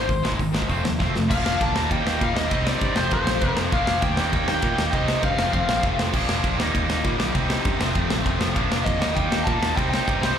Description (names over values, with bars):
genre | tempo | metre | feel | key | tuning
punk rock | 198 BPM | 4/4 | straight | unclear | A4 = 440 Hz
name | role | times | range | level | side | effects
bluesy overdriven lead guitar | melody | 0.0-5.9, 8.8-10.4 s | C5 to A5 | -26 LUFS | left 2 dB | distortion, slapback echo
distorted electric guitar | riff | 0.0-10.4 s | F2 to F4 | -27 LUFS | left 10 dB | overdrive, slapback echo
tight distorted guitar | riff | 0.0-10.4 s | F2 to Eb4 | -27 LUFS | right 13 dB | distortion, slapback echo
modern bright picked electric bass | bass | 0.0-10.3 s | F1 to Bb2 | -27 LUFS | right 1 dB | none
big rock drum kit | drums | 0.1-10.3 s | crash cymbal, hi-hat, kick drum, ride cymbal, snare drum | -25 LUFS | equal | none
room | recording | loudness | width
studio reverb | live gig heard through the venue's PA, club reverb | -20 LUFS | side -8 dB against mid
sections
0.0-1.3 A section; 1.3-10.4 B section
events
drum fill 1.0-1.3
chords
0.0 Ab; 0.7 F7; 1.3 Bb; 1.8 Eb; 2.5 Cm; 3.0 F; 3.7 Bb; 4.2 Eb; 4.9 Cm; 5.4 F; 6.1 Bb; 6.6 Eb; 7.3 Cm; 7.8 F; 8.6 Bb; 9.0 Eb; 9.8 Cm